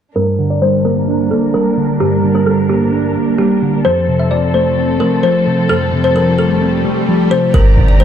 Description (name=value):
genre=hip hop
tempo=130 BPM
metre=4/4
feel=half-time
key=G minor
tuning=A4 = 439 Hz
part: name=kalimba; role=melody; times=0.2-8.0 s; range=G4 to E5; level=-16 LUFS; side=left 1 dB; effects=low-pass filter, ping-pong delay
part: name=mellow electric guitar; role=accompaniment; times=0.2-8.0 s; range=F2 to D4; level=-14 LUFS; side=equal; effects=analog chorus, low-pass filter
part: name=dark studio string section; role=sustained chords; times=0.2-8.0 s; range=F3 to Bb5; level=-21 LUFS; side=right 2 dB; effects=low-pass filter
part: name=swell and impact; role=sound effects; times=5.9-8.0 s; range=none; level=-19 LUFS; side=equal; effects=none
part: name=warm 808-style bass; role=bass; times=7.5-8.0 s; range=G1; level=-10 LUFS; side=equal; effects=none
room=light reverb, small room ambience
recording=dark, warm production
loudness=-11 LUFS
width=side -9 dB against mid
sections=0.2-7.5 A section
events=filter sweep 0.2-7.5; swell 5.9-7.5; impact 7.5-8.0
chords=0.2 Gm; 3.8 F; 7.5 Gm